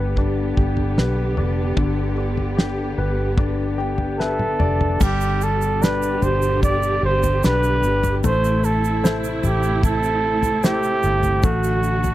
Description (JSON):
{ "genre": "pop ballad", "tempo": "75 BPM", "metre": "4/4", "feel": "straight", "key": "unclear", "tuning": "A4 = 439 Hz", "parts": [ { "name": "clear concert grand piano", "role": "accompaniment", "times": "0.0-12.1 s", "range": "D3 to G5", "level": "-26 LUFS", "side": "left 6 dB", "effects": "none" }, { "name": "dark studio string section", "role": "sustained chords", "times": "0.0-12.1 s", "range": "B2 to G4", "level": "-26 LUFS", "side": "right 3 dB", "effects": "none" }, { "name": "vintage muted fingered electric bass", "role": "bass", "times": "0.0-12.1 s", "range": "F1 to B1", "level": "-23 LUFS", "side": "equal", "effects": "none" }, { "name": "damped 70s drum kit", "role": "drums", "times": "0.2-12.1 s", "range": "crash cymbal, kick drum, snare drum, toms", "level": "-21 LUFS", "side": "equal", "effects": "none" }, { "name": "breathy flugelhorn", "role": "melody", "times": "4.2-12.1 s", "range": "F#4 to D5", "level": "-21 LUFS", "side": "right 2 dB", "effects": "none" }, { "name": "egg shaker", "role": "percussion", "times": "5.0-12.1 s", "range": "none", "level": "-37 LUFS", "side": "right 18 dB", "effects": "none" } ], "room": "studio reverb", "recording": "dry, close 1970s-style studio recording", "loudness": "-17 LUFS", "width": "side -14 dB against mid", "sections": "0.0-5.0 A section; 5.0-12.1 B section", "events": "grand piano fill 3.4-5.0; drum fill 4.2-5.0", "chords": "0.0 G; 8.2 Am; 11.4 D/A" }